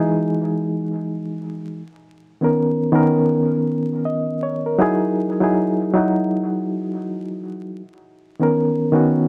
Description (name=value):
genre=hip hop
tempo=80 BPM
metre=4/4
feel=swing 61% on 16ths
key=unclear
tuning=A4 = 442 Hz
part: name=bright reed electric piano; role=solo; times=0.0-9.3 s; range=D#3 to D#5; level=-20 LUFS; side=equal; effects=overdrive, fast tremolo
room=moderate studio reverb, RT60 0.5 s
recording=vinyl crackle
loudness=-20 LUFS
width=mono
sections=0.0-9.3 A section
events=none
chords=0.0 Emaj9; 1.8 Bmaj9; 4.8 Emaj9; 7.8 Bmaj9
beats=0.31 1.06 | 1.81 2.56 3.31 4.06 | 4.81 5.56 6.31 7.06 | 7.81 8.56